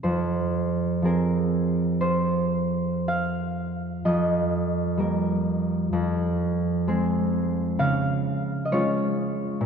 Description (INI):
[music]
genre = classical, solo harp piece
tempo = 55-66 BPM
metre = 4/4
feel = rubato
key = F minor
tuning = A4 = 440 Hz
[part]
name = concert harp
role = solo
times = 0.0-9.7 s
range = F2 to F5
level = -22 LUFS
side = right 1 dB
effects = none
[sound]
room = wet church reverb, RT60 3.2 s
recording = recorded in a church or concert hall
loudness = -22 LUFS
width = side -6 dB against mid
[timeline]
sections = 0.0-9.7 A section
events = none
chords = 0.0 Fm; 4.0 Eb/F; 5.9 Ab/F; 7.8 Db